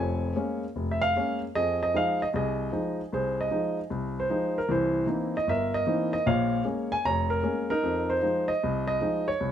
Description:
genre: solo jazz.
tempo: 153 BPM.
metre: 4/4.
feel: swing 66% on 8ths.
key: F minor.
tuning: A4 = 440 Hz.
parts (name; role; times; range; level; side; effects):
warm grand piano; solo; 0.0-9.5 s; F1 to Bb5; -25 LUFS; equal; none.
room: light reverb.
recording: none.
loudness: -25 LUFS.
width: side -9 dB against mid.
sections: 0.0-9.5 A section.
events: none.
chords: 0.0 Bbm7; 1.6 Fm7; 4.7 C7#9; 6.3 Bbm7; 7.8 Fm7.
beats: 0.37 0.76 1.16 | 1.55 1.94 2.34 2.73 | 3.12 3.52 3.91 4.30 | 4.70 5.09 5.48 5.87 | 6.27 6.66 7.05 7.45 | 7.84 8.23 8.62 9.02 | 9.41.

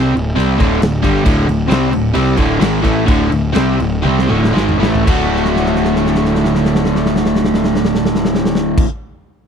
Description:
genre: classic rock.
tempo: 114-135 BPM.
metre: 4/4.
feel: straight.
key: D mixolydian.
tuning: A4 = 440 Hz.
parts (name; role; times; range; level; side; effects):
distorted electric guitar; riff; 0.0-8.9 s; D2 to F#4; -19 LUFS; left 1 dB; overdrive.
overdriven electric guitar; riff; 0.0-8.9 s; D2 to F#4; -16 LUFS; right 1 dB; none.
fuzz picked electric bass; bass; 0.0-8.8 s; D1 to C2; -19 LUFS; equal; overdrive.
big rock drum kit; drums; 0.2-8.9 s; crash cymbal, kick drum, snare drum, toms; -18 LUFS; equal; none.
room: little or no reverb.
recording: dry, close 1970s-style studio recording.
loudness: -12 LUFS.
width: side -7 dB against mid.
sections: 0.0-5.1 A section; 5.1-9.3 B section.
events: slowing down 1.3-5.1; drum fill 4.0-5.1, 5.3-8.8.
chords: 0.0 D5; 5.1 D.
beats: 0.36 0.81 | 1.26 1.70 2.15 2.61 | 3.08 3.55 4.04 4.54 | 5.06 5.58 6.11 6.64 | 7.16 7.69 8.21 8.74.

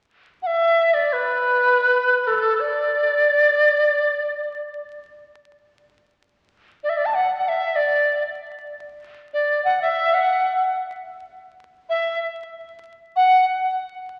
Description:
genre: chinese traditional.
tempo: free time.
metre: none.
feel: none.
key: D gong mode.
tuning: A4 = 440 Hz.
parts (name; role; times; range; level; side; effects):
large dizi; melody; 0.4-13.4 s; A4 to A5; -20 LUFS; equal; none.
room: wet concert hall reverb, RT60 2.4 s.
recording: very old 78 rpm record, vinyl crackle.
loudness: -20 LUFS.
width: mono.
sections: 0.0-5.9 A section; 5.9-14.2 B section.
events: none.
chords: none.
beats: free time.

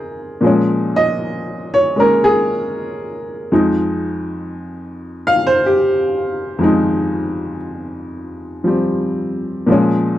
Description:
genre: solo jazz.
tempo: 78 BPM.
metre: 4/4.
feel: swing 66% on 8ths.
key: F minor.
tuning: A4 = 440 Hz.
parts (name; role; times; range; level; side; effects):
warm upright piano; solo; 0.0-10.2 s; F2 to F5; -15 LUFS; equal; none.
room: little or no reverb.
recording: dry, close 1970s-style studio recording.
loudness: -14 LUFS.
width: side -13 dB against mid.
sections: 0.0-10.2 A section.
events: upright piano solo 0.0-10.2.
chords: 0.4 Bbm7; 3.5 Fm7; 9.7 Bbm7.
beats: | 0.42 1.19 1.96 2.74 | 3.51 4.28 5.05 5.82 | 6.59 7.36 8.13 8.90 | 9.68.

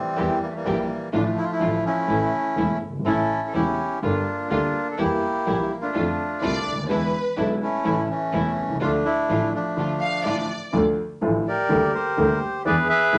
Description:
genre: tango.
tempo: 125 BPM.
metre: 4/4.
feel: rubato.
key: D minor.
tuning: A4 = 440 Hz.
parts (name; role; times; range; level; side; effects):
bandoneon; melody; 0.0-13.2 s; E3 to E5; -26 LUFS; equal; none.
dark concert grand piano; accompaniment; 0.2-13.2 s; E1 to G#4; -29 LUFS; equal; none.
dark studio string section; stabs; 0.2-10.5 s; G3 to G4; -36 LUFS; equal; none.
clear double bass; bass; 0.2-13.2 s; E1 to F2; -29 LUFS; equal; none.
dark studio violin section; second line; 6.4-10.7 s; B4 to F5; -30 LUFS; equal; none.
room: moderate studio reverb, RT60 0.8 s.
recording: nothing above 10.4 kHz.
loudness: -23 LUFS.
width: mono.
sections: 0.0-10.7 A section; 10.7-13.2 A section.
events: break 9.8-10.7.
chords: 0.2 Edim; 1.1 Dm/A; 2.1 A; 4.0 Gm7; 5.0 Edim; 5.9 F6; 6.9 E7; 7.8 A; 8.8 Dm; 11.7 Gm/D; 12.7 E7.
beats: 0.17 0.65 | 1.13 1.61 2.09 2.57 | 3.06 3.54 4.02 4.50 | 4.98 5.46 5.94 6.42 | 6.89 7.37 7.85 8.33 | 8.81 9.29 9.77 10.26 | 10.74 11.22 11.70 12.18 | 12.66 13.14.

